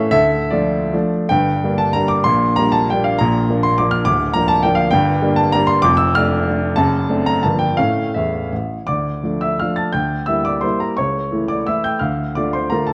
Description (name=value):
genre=classical, romantic triple-time dance for piano with dotted rhythms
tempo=141-220 BPM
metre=3/4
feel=rubato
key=G minor, D minor from 4.9 s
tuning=A4 = 440 Hz
part: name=warm baby grand piano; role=solo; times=0.0-12.9 s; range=D1 to A6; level=-17 LUFS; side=equal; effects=none
room=moderate recital hall reverb, RT60 1.6 s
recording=worn, warbling old tape, cassette tape, warbly pitch drift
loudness=-17 LUFS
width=mono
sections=0.0-1.3 A section; 1.3-8.9 B section; 8.9-12.9 A section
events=none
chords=0.1 Dm; 1.3 Gm; 2.3 Gm/Bb; 3.2 Bb; 4.1 Bb/D; 4.9 Gm; 5.8 Dm/F; 6.8 D7/F#; 7.4 Gm7; 7.8 A; 8.9 Dm; 9.9 Em7b5/D; 11.0 A/C#; 12.0 Dm